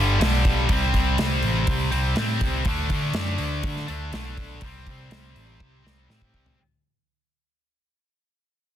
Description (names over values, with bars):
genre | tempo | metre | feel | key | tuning
hard rock | 122 BPM | 4/4 | straight | unclear | A4 = 440 Hz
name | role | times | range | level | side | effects
heavy high-gain guitar | riff | 0.0-6.6 s | G2 to D4 | -26 LUFS | left 1 dB | distortion
overdriven picked electric bass | bass | 0.0-6.6 s | G1 to D3 | -26 LUFS | equal | none
big rock drum kit | drums | 0.2-6.6 s | hi-hat, kick drum, snare drum, toms | -27 LUFS | equal | none
room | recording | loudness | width
little or no reverb | dense, heavily limited modern master | -21 LUFS | side -11 dB against mid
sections
0.0-6.6 A section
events
fade-out 0.0-6.6; drum fill 5.6-6.6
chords
0.0 G; 0.7 C5; 2.7 D5; 4.6 C5